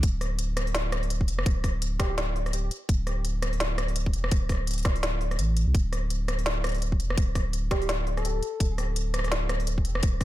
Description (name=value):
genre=half-time drum and bass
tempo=168 BPM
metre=4/4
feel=swing 58% on 16ths, half-time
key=unclear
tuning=A4 = 439 Hz
part: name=saturated sub bass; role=bass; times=0.0-10.2 s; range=D1 to C2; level=-28 LUFS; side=equal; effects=none
part: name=electronic kick drum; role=drums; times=0.0-10.2 s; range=none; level=-25 LUFS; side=equal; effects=overdrive
part: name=organic electronic drum kit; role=drums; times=0.0-10.2 s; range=hi-hat, rim click, snare drum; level=-31 LUFS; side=equal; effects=none
part: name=soft struck synth lead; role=melody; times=2.0-2.1, 7.7-8.7 s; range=G4 to A4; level=-36 LUFS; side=equal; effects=chorus, phaser, cassette tape, dub echo
room=little or no reverb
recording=echo-heavy mix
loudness=-25 LUFS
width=side -15 dB against mid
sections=0.0-10.2 A section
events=none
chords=none